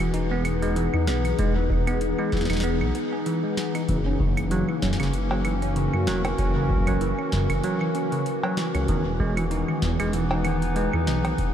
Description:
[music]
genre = IDM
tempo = 96 BPM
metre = 4/4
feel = swing 56% on 16ths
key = E lydian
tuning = A4 = 440 Hz
[part]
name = warbly tape-like pad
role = sustained chords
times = 0.0-11.5 s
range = E3 to B4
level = -27 LUFS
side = left 2 dB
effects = chorus, built-in reverb
[part]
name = bell-like tine electric piano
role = arpeggios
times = 0.0-11.4 s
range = C#3 to G#4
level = -28 LUFS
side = right 3 dB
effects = tape echo
[part]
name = dark detuned saw bass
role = bass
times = 0.0-11.5 s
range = E1 to F#2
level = -26 LUFS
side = equal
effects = none
[part]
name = booming analog drum machine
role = drums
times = 0.0-11.5 s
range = claves, cowbell, hi-hat, snare drum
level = -33 LUFS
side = right 1 dB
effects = tape echo
[part]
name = electronic kick drum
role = drums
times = 1.4-11.5 s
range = none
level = -27 LUFS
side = equal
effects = none
[sound]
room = moderate huge ambient reverb, RT60 7.5 s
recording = dreamy mix soaked in reverb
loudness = -22 LUFS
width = side -9 dB against mid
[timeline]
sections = 0.0-11.5 A section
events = none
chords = 0.0 Emaj7; 3.9 F#7; 8.9 Emaj7

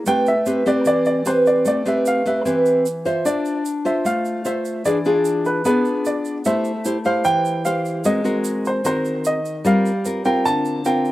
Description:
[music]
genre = bossa nova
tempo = 150 BPM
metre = 4/4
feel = straight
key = A minor, D minor from 3.2 s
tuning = A4 = 440 Hz
[part]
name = nylon-string guitar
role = accompaniment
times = 0.0-11.1 s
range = D3 to E5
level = -19 LUFS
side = equal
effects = slapback echo
[part]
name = warm baby grand piano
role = melody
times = 0.1-11.1 s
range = B4 to A5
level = -22 LUFS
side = right 1 dB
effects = slapback echo
[part]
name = egg shaker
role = percussion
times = 0.1-11.1 s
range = none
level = -35 LUFS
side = right 7 dB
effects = none
[sound]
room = light reverb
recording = recorded outdoors, with no room sound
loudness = -17 LUFS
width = side -16 dB against mid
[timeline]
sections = 0.0-3.2 A section; 3.2-11.1 B section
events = none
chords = 0.1 Am9; 3.2 Dm9; 4.8 E7b9; 6.4 Am7; 8.0 G#9; 9.6 Gm11

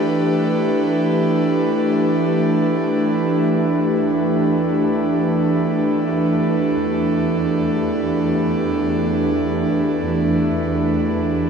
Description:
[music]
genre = ambient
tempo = free time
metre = none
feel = none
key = E minor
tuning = A4 = 442 Hz
[part]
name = airy breathy pad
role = sustained chords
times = 0.0-11.5 s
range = E3 to B4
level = -16 LUFS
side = right 1 dB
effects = chorus
[part]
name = dark chamber double bass section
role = bass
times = 3.5-11.5 s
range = E2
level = -30 LUFS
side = right 1 dB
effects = none
[sound]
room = wet lush hall reverb, RT60 2.9 s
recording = faint mains hum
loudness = -16 LUFS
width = side -6 dB against mid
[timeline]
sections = 0.0-3.5 A section; 3.5-11.5 B section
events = fade-in on double bass section 3.5-11.5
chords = 0.0 Em7

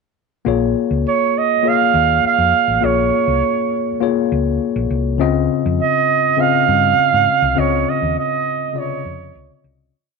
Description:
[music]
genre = lush 1970s-style soul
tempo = 101 BPM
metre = 4/4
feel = straight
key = Bb minor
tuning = A4 = 444 Hz
[part]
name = tine electric piano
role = accompaniment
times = 0.5-10.0 s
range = C3 to Eb5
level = -19 LUFS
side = left 11 dB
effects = none
[part]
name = hollow-body short-scale fingered electric bass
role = bass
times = 0.5-9.9 s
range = A1 to Ab2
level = -21 LUFS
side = left 1 dB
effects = none
[part]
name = clear flugelhorn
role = melody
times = 1.1-9.7 s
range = Db5 to F5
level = -16 LUFS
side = right 12 dB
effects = none
[sound]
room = moderate echo chamber reverb, RT60 2.2 s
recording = 1960s-style stereo with parts hard left and right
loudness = -14 LUFS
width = side -4 dB against mid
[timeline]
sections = 0.5-9.9 verse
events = fade-out 7.6-9.9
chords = 0.5 Bbm7; 5.2 Dbmaj9

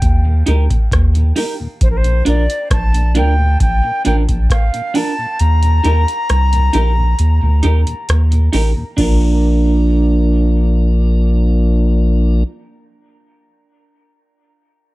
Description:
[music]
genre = roots reggae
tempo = 67 BPM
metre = 4/4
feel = straight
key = Bb major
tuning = A4 = 440 Hz
[part]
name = silver concert flute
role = melody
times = 0.0-8.1 s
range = Bb4 to Bb5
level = -21 LUFS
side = left 1 dB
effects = dub echo
[part]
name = soft dub sub bass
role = bass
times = 0.0-12.4 s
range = A1 to Eb2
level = -13 LUFS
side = equal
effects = none
[part]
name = booming analog drum machine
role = drums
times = 0.0-9.2 s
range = crash cymbal, hi-hat, kick drum, rim click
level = -16 LUFS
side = equal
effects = none
[part]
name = mellow tonewheel organ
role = accompaniment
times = 0.3-12.4 s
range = Eb2 to Eb4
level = -22 LUFS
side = left 2 dB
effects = slow rotary speaker
[part]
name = semi-hollow electric guitar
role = accompaniment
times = 0.5-12.5 s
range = D4 to Bb4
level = -21 LUFS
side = right 4 dB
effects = dub echo, plate reverb
[sound]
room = light reverb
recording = dark, warm production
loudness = -12 LUFS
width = side -18 dB against mid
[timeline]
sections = 0.0-9.0 A section; 9.0-12.6 B section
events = kick muted 5.4-9.0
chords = 0.0 Eb; 1.8 Bb; 5.4 Eb; 9.0 Bb

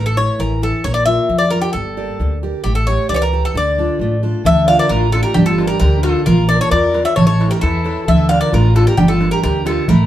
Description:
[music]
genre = greek folk, Greek bouzouki band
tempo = 133 BPM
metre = 2/4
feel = straight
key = D harmonic minor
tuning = A4 = 439 Hz
[part]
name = Greek bouzouki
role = melody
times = 0.0-10.1 s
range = G4 to F5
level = -18 LUFS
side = left 1 dB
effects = none
[part]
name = picked steel-string acoustic guitar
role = accompaniment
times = 0.0-10.1 s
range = D3 to D5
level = -21 LUFS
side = right 1 dB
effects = none
[part]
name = upright bass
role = bass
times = 0.0-10.1 s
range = G1 to F2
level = -18 LUFS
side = equal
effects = none
[part]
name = warm violin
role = second line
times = 4.4-10.1 s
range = D4 to D5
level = -22 LUFS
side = left 2 dB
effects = none
[part]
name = darbuka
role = percussion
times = 4.5-10.0 s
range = none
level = -17 LUFS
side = right 1 dB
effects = none
[sound]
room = wet small room reverb, RT60 0.5 s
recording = heard from further back in the room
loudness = -13 LUFS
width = side -12 dB against mid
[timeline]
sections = 0.0-4.5 A section; 4.5-10.1 B section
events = none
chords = 0.0 A; 0.8 Bb; 1.7 Gm; 2.6 A7; 3.5 Dm; 5.4 Gm; 6.3 Bb; 7.2 A; 8.1 Dm; 9.0 Gm

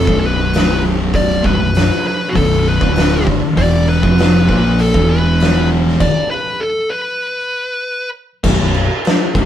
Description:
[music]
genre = stoner and doom metal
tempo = 99 BPM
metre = 4/4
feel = straight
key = B phrygian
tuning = A4 = 440 Hz
[part]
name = fuzz lead guitar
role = melody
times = 0.0-8.1 s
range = F#4 to D5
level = -19 LUFS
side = equal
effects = distortion
[part]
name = thick fuzz guitar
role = riff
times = 0.0-9.5 s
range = B1 to A#3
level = -17 LUFS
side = left 5 dB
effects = distortion
[part]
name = thick fuzz guitar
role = riff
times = 0.0-6.0 s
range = B1 to A#3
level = -19 LUFS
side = right 5 dB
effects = distortion
[part]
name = picked electric bass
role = bass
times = 0.0-9.5 s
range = B0 to A#1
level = -18 LUFS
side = equal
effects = overdrive
[part]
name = oversized low-tuned drum kit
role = drums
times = 0.1-9.5 s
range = crash cymbal, hi-hat, kick drum, snare drum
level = -17 LUFS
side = equal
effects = none
[sound]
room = moderate studio reverb, RT60 0.6 s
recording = band playing live in one room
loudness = -12 LUFS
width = side -10 dB against mid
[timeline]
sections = 0.0-8.4 A section; 8.4-9.5 B section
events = stop 6.0-8.4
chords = 0.0 Bm; 3.6 E5; 8.4 B5

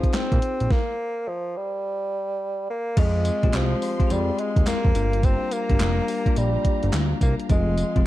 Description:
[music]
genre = R&B, new jack swing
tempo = 106 BPM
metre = 4/4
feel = swing 64% on 16ths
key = F dorian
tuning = A4 = 439 Hz
[part]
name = warm bassoon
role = melody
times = 0.0-8.0 s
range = F3 to C4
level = -27 LUFS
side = right 1 dB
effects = none
[part]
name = bell-like tine electric piano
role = accompaniment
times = 0.0-8.1 s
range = F3 to Ab4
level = -28 LUFS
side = left 7 dB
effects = none
[part]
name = warm studio string section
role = sustained chords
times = 0.0-8.1 s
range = Ab3 to Eb6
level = -39 LUFS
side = right 1 dB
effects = none
[part]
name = gated 80s digital drum machine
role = drums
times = 0.0-8.1 s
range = crash cymbal, handclaps, hi-hat, kick drum, snare drum, tambourine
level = -22 LUFS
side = equal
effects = gated reverb, gated reverb snare, overdrive
[part]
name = group handclap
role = percussion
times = 0.1-7.1 s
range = none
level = -44 LUFS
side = right 4 dB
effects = none
[part]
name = fat analog bass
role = bass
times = 0.3-8.0 s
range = F1 to Bb2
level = -24 LUFS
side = equal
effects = none
[sound]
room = digital ambience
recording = dark, warm production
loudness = -20 LUFS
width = side -15 dB against mid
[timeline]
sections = 0.0-3.0 A section; 3.0-8.1 B section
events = stop 0.7-3.0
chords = 0.0 Bb7sus4; 0.7 N.C.; 3.0 Fm; 5.0 Gm7; 7.5 Fm

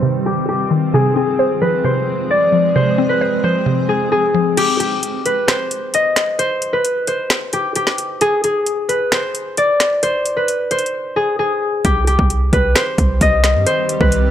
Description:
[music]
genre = hip hop, trap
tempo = 132 BPM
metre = 4/4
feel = half-time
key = C harmonic minor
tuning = A4 = 439 Hz
[part]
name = concert harp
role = melody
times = 0.0-14.3 s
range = G4 to Eb5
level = -16 LUFS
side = left 1 dB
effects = low-pass filter, tape echo
[part]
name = mallet-like synth pluck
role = accompaniment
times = 0.0-4.6 s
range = C3 to C5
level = -18 LUFS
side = equal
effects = chorus, phaser, low-pass filter
[part]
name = granular cloud pad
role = sustained chords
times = 0.0-4.6, 12.8-14.3 s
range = Eb3 to Ab4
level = -23 LUFS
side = right 1 dB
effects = built-in reverb, low-pass filter
[part]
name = trap drum kit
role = drums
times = 4.6-14.2 s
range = crash cymbal, finger snaps, hi-hat, kick drum, snare drum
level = -18 LUFS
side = equal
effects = none
[part]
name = warm 808-style bass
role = bass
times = 11.8-14.3 s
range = C2 to G2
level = -16 LUFS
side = right 1 dB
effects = none
[sound]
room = little or no reverb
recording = dry, gritty hardware recording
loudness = -14 LUFS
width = side -10 dB against mid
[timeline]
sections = 0.0-4.6 A section; 4.6-14.3 B section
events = filter sweep 0.0-4.6; kick muted 4.6-11.8; drums muted 10.9-11.8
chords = 0.0 Cm; 0.9 Fm; 4.6 N.C.; 11.8 Cm

